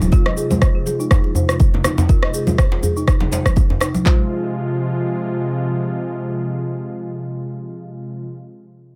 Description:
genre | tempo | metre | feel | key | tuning
afro house | 122 BPM | 4/4 | swing 55% on 16ths | F minor pentatonic | A4 = 440 Hz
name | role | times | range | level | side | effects
warm analog pad | sustained chords | 0.0-8.3 s | C3 to F4 | -26 LUFS | equal | subtle chorus, sidechain pumping
deep mellow chord stab | stabs | 0.0-8.2 s | Ab3 to F5 | -31 LUFS | equal | none
electronic shaker and rim click | drums | 0.0-4.0 s | none | -25 LUFS | equal | none
congas | percussion | 0.0-4.0 s | none | -27 LUFS | equal | none
folk marimba with medium mallets | arpeggios | 0.1-4.3 s | Eb4 to Eb5 | -29 LUFS | equal | sidechain pumping, low-pass filter, dub echo
afro-pop drum kit | drums | 0.1-4.2 s | handclaps, kick drum | -17 LUFS | equal | none
djembe | percussion | 0.5-3.9 s | none | -25 LUFS | equal | none
room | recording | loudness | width
little or no reverb | none | -18 LUFS | mono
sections
0.0-4.1 A section; 4.1-8.0 B section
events
filter sweep on marimba 0.0-4.1; filter sweep on analog synth pad 0.0-4.1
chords
0.0 Fm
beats
| 0.12 0.61 1.11 1.60 | 2.09 2.58 3.07 3.57 | 4.06 4.55 5.04 5.53 | 6.03 6.52 7.01 7.50

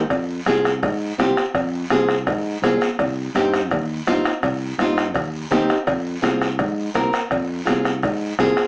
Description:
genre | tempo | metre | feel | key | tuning
latin, cumbia | 166 BPM | 4/4 | straight | unclear | A4 = 440 Hz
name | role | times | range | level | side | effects
sustaining fretless electric bass | bass | 0.0-8.5 s | C2 to Ab2 | -24 LUFS | equal | none
bombo | percussion | 0.1-8.7 s | none | -24 LUFS | equal | none
congas | percussion | 0.1-8.6 s | none | -28 LUFS | equal | none
cowbell and timbales | percussion | 0.1-8.6 s | none | -27 LUFS | equal | none
guiro | percussion | 0.1-8.7 s | none | -34 LUFS | equal | none
nylon-string guitar | accompaniment | 0.5-8.6 s | C4 to Bb4 | -20 LUFS | equal | none
room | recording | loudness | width
wet studio reverb, RT60 0.5 s | band playing live in one room, small speaker sound | -18 LUFS | side -31 dB against mid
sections
0.1-8.7 A section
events
none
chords
0.1 Fm; 3.0 Cm; 5.9 Fm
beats
| 0.11 0.47 0.83 1.19 | 1.55 1.91 2.27 2.63 | 2.99 3.35 3.71 4.07 | 4.43 4.79 5.16 5.51 | 5.88 6.24 6.60 6.96 | 7.32 7.68 8.04 8.40

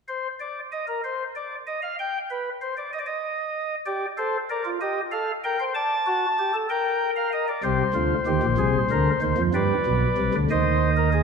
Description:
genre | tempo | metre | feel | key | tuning
classical, baroque-style 3-part fugue for pipe organ | 64 BPM (dotted quarters) | 6/8 | straight | unclear | A4 = 440 Hz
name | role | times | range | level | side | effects
pipe organ, flutes | solo | 0.1-11.2 s | Bb1 to A5 | -22 LUFS | equal | none
room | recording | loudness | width
wet concert hall reverb, RT60 1.8 s | minimal, uncompressed stereo recording | -22 LUFS | side -5 dB against mid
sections
0.1-11.2 A section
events
none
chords
0.1 N.C.; 3.9 Gm; 4.8 Am7b5/G; 5.8 D; 6.7 Gm/Bb; 7.6 Cm; 8.6 Dm7b5/C; 9.5 G; 10.5 Cm/Eb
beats
| 0.07 1.03 | 1.98 2.92 | 3.86 4.81 | 5.75 6.69 | 7.63 8.57 | 9.52 10.47

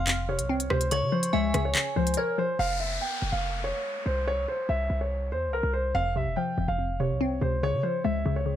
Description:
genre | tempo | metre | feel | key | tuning
hip hop, drill | 143 BPM | 4/4 | half-time | F harmonic minor | A4 = 440 Hz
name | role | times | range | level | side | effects
warm concert grand piano | melody | 0.0-8.6 s | Bb4 to G5 | -29 LUFS | equal | none
metallic FM bell | second line | 0.0-2.1 s | Ab5 to F6 | -35 LUFS | right 3 dB | chorus, tape echo
glassy wavetable pluck | accompaniment | 0.0-2.6, 6.0-8.6 s | F2 to Db5 | -29 LUFS | left 2 dB | chorus
hard-hitting 808-style bass | bass | 0.0-8.6 s | F1 to Db3 | -30 LUFS | equal | none
drill drum kit | drums | 0.1-2.2 s | handclaps, hi-hat, rim click | -28 LUFS | equal | none
downlifter and swell | sound effects | 2.6-8.6 s | none | -38 LUFS | left 1 dB | none
room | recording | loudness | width
little or no reverb | none | -25 LUFS | side -11 dB against mid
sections
0.0-2.6 A section; 2.6-8.6 B section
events
drums muted 2.2-2.6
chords
0.0 F5; 0.9 Db; 2.6 F5; 4.3 N.C.; 5.9 F5; 7.6 Db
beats
0.07 0.49 | 0.91 1.33 1.75 2.17 | 2.59 3.01 3.43 3.85 | 4.27 4.69 5.11 5.53 | 5.95 6.37 6.79 7.21 | 7.63 8.05 8.47

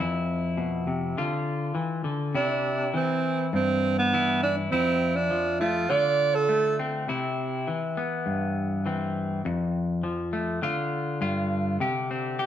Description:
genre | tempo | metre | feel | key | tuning
highlife | 102 BPM | 4/4 | straight | C major | A4 = 436 Hz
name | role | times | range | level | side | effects
semi-hollow electric guitar | accompaniment | 0.0-12.5 s | F2 to G4 | -26 LUFS | left 2 dB | spring reverb
breathy alto saxophone | melody | 2.4-6.8 s | B3 to D5 | -24 LUFS | right 4 dB | none
room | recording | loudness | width
wet studio reverb, RT60 0.9 s | band playing live in one room | -24 LUFS | side -10 dB against mid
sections
0.0-11.8 A section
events
none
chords
0.0 F5; 1.2 Dm; 2.3 C; 4.7 Fmaj7; 5.9 Dm7; 7.1 Cmaj7; 9.4 F; 10.6 Dm; 11.2 G5; 11.8 Gsus4/C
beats
0.57 1.16 1.75 | 2.34 2.94 3.53 4.12 | 4.71 5.30 5.89 6.48 | 7.07 7.66 8.26 8.85 | 9.44 10.03 10.62 11.21 | 11.80 12.40

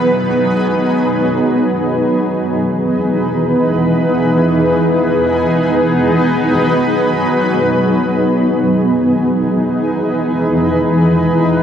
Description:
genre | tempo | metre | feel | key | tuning
hip hop | free time | none | none | unclear | A4 = 444 Hz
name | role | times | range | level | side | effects
granular cloud pad | solo | 0.0-11.6 s | E3 to B4 | -12 LUFS | equal | built-in reverb, digital delay
room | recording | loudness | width
moderate huge ambient reverb, RT60 4.2 s | none | -12 LUFS | side -8 dB against mid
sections
0.0-2.1 A section; 2.1-11.6 B section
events
none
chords
0.0 G#m7; 2.1 Emaj7; 5.3 G#m7; 8.5 Emaj7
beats
free time

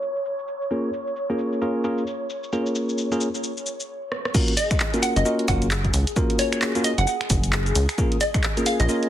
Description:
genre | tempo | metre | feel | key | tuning
UK garage, two-step garage | 132 BPM | 4/4 | swing 60% on 16ths | unclear | A4 = 441 Hz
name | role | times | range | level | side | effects
airy breathy pad | sustained chords | 0.0-9.1 s | G#4 to C#5 | -32 LUFS | left 1 dB | chorus, sidechain pumping
punchy analog drum machine | drums | 0.0-9.1 s | cabasa, crash cymbal, finger snaps, handclaps, hi-hat, rim click | -27 LUFS | equal | low-pass filter on hats, low-pass filter on snare, low-pass filter on perc, low-pass filter on cymbals, low-pass filter on room
bell-like tine electric piano | stabs | 0.7-9.1 s | A#3 to A#4 | -25 LUFS | equal | digital delay
electronic kick drum | drums | 4.3-8.4 s | none | -23 LUFS | equal | none
hollow square pluck | melody | 4.6-9.0 s | C#5 to F#5 | -26 LUFS | equal | lush chorus, digital delay
rubbery square bass | bass | 5.2-8.9 s | F#1 to C#2 | -22 LUFS | equal | none
room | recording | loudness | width
moderate studio reverb, RT60 0.5 s | heavily compressed radio sound, multiband compression, low-pass filter | -21 LUFS | side -11 dB against mid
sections
0.0-4.3 A section; 4.3-9.1 B section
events
filter sweep 0.0-4.3; drum fill 4.1; drop 4.3-9.1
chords
0.0 N.C.; 0.7 A#m7; 4.3 F#maj7; 8.0 A#m7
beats
0.25 | 0.71 1.16 1.62 2.07 | 2.53 2.98 3.44 3.89 | 4.34 4.80 5.25 5.71 | 6.16 6.62 7.07 7.53 | 7.98 8.44 8.89

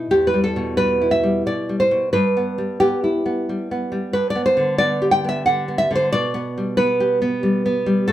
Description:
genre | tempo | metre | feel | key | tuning
romantic piece for solo classical guitar | 90 BPM | 3/4 | rubato | E minor | A4 = 440 Hz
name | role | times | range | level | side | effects
nylon-string guitar | solo | 0.0-8.1 s | E2 to G5 | -17 LUFS | equal | none
room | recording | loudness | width
moderate studio reverb, RT60 0.6 s | band playing live in one room | -17 LUFS | side -13 dB against mid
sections
0.1-8.1 A section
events
none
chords
0.1 Em; 2.1 Em/G; 4.1 G; 6.1 G/B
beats
| 0.11 0.79 1.47 | 2.14 2.80 3.48 | 4.13 4.79 5.46 | 6.13 6.79 7.45 | 8.11

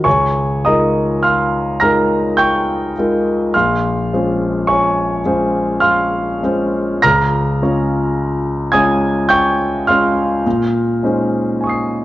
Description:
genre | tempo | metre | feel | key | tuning
classical, impressionist solo piano | 52 BPM | 3/4 | rubato | Db lydian | A4 = 440 Hz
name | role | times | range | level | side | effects
clear concert grand piano | solo | 0.0-12.0 s | Bb1 to C7 | -13 LUFS | equal | none
room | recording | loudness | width
moderate recital hall reverb, RT60 1.6 s | worn, warbling old tape, cassette tape, warbly pitch drift, nothing above 7.9 kHz | -13 LUFS | side -15 dB against mid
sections
0.1-12.0 A section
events
none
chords
0.1 Db69; 3.5 Bbm9; 7.0 Db6; 10.4 Bbm11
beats
| 0.05 1.24 2.39 | 3.54 4.67 5.81 | 7.03 8.17 9.30 | 10.45 11.60

